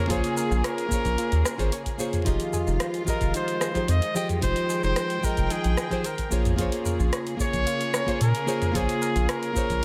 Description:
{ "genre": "sunset chillout", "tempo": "111 BPM", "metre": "4/4", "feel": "straight", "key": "unclear", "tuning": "A4 = 441 Hz", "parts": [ { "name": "clear flugelhorn", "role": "melody", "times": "0.0-9.8 s", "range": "Ab4 to Eb5", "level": "-32 LUFS", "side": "equal", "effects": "delay, shimmer reverb" }, { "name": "nylon-string guitar", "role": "accompaniment", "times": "0.0-9.8 s", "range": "F3 to G5", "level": "-31 LUFS", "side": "equal", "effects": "delay, shimmer reverb" }, { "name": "dark studio string section", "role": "sustained chords", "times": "0.0-9.8 s", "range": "Db3 to G5", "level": "-37 LUFS", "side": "equal", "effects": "shimmer reverb" }, { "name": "soft round pluck", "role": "arpeggios", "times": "0.1-9.8 s", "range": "Eb4 to Db5", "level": "-41 LUFS", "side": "equal", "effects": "chorus, delay, shimmer reverb" }, { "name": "round analog bass", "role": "bass", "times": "0.1-9.8 s", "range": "F1 to Bb2", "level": "-27 LUFS", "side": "equal", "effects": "none" }, { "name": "electronic kick drum", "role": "drums", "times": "0.1-9.8 s", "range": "none", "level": "-33 LUFS", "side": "equal", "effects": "overdrive" }, { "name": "smooth R&B drum kit", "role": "drums", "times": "0.1-9.8 s", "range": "hi-hat, rim click, shaker, toms", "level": "-33 LUFS", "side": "equal", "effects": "none" } ], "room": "light reverb", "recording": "none", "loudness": "-25 LUFS", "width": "mono", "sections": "0.0-9.8 A section", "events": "none", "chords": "0.0 Bbm7; 2.3 Fm7; 6.3 Bbm7", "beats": "| 0.10 0.64 1.18 1.72 | 2.27 2.81 3.35 3.89 | 4.43 4.97 5.51 6.05 | 6.59 7.13 7.67 8.21 | 8.75 9.29 9.83" }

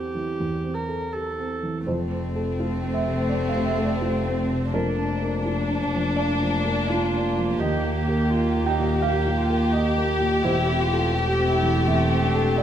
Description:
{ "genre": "neoclassical piano and strings", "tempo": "84 BPM", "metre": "4/4", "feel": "rubato", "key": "F major", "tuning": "A4 = 436 Hz", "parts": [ { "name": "felt-muted upright piano", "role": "accompaniment", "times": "0.0-12.6 s", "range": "Eb2 to G5", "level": "-27 LUFS", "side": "right 2 dB", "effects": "none" }, { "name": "warm viola", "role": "accompaniment", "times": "0.0-12.6 s", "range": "A3 to Bb4", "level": "-30 LUFS", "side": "right 3 dB", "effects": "none" }, { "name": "dark double bass", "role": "bass", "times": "1.8-12.6 s", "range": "E1 to Eb2", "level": "-26 LUFS", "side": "left 1 dB", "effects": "none" }, { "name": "warm chamber violin section", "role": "melody", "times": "1.9-12.6 s", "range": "C4 to G4", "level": "-26 LUFS", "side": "left 3 dB", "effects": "none" }, { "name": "warm cello", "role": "second line", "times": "3.3-12.6 s", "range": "A3 to G4", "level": "-29 LUFS", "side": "right 3 dB", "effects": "none" } ], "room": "moderate recital hall reverb, RT60 1.7 s", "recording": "minimal, uncompressed stereo recording", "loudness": "-21 LUFS", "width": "side -10 dB against mid", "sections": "0.0-1.9 A section; 1.9-12.6 A section", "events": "none", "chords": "0.0 C6/E; 1.9 F; 4.7 Bb/F; 7.6 Eb; 10.4 C6/E", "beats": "0.38 1.12 | 1.85 2.57 3.29 4.02 | 4.74 5.45 6.17 6.88 | 7.60 8.31 9.02 9.74 | 10.45 11.16 11.87 12.58" }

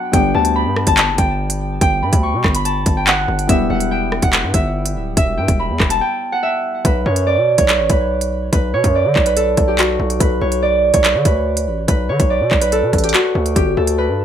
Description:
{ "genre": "hip hop, drill", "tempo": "143 BPM", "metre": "4/4", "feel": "half-time", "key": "B minor", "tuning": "A4 = 440 Hz", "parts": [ { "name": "Celtic harp", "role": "melody", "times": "0.0-14.2 s", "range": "F#4 to C#6", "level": "-17 LUFS", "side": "right 1 dB", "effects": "low-pass filter, digital delay" }, { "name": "felt-muted upright piano", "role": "accompaniment", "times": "0.0-6.9 s", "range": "G3 to G4", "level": "-24 LUFS", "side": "left 3 dB", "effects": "low-pass filter" }, { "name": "distorted 808-style bass", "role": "bass", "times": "0.1-14.2 s", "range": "D1 to D3", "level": "-20 LUFS", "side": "equal", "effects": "distortion" }, { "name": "drill drum kit", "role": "drums", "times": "0.1-14.0 s", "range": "handclaps, hi-hat, kick drum, rim click", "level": "-16 LUFS", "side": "equal", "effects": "none" } ], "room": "light reverb", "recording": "none", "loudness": "-14 LUFS", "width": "side -9 dB against mid", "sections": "0.0-6.8 A section; 6.8-14.2 B section", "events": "break 6.0-6.8", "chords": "0.1 G; 3.5 Em; 6.8 Bm; 13.6 G", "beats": "| 0.14 0.56 0.97 1.39 | 1.81 2.23 2.65 3.07 | 3.49 3.91 4.33 4.75 | 5.17 5.59 6.01 6.43 | 6.85 7.27 7.69 8.11 | 8.53 8.95 9.37 9.79 | 10.21 10.62 11.04 11.46 | 11.88 12.30 12.72 13.14 | 13.56 13.98" }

